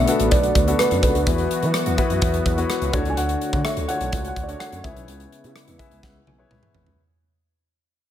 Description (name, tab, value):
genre	1980s-style pop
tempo	126 BPM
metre	4/4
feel	straight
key	unclear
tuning	A4 = 440 Hz
part	felt-muted upright piano	melody	0.0-6.5 s	B4 to G#5	-25 LUFS	right 1 dB	ping-pong delay
part	warm concert grand piano	accompaniment	0.0-7.0 s	B2 to B5	-25 LUFS	left 4 dB	none
part	sweeping resonant pad	sustained chords	0.0-7.0 s	C#3 to C#5	-28 LUFS	equal	chorus
part	smooth gliding synth bass	bass	0.0-7.0 s	G#1 to E3	-25 LUFS	equal	none
part	modern studio drum kit	drums	0.1-7.0 s	hi-hat, kick drum, rim click, snare drum, toms	-24 LUFS	equal	gated reverb
room	light reverb, studio reverb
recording	none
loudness	-18 LUFS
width	side -10 dB against mid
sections	0.0-7.0 A section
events	fade-out 0.0-7.0; grand piano fill 5.6-7.0; drum fill 6.0-7.0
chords	0.0 Bm7; 1.3 Esus2; 2.9 Dmaj7; 4.8 C#m7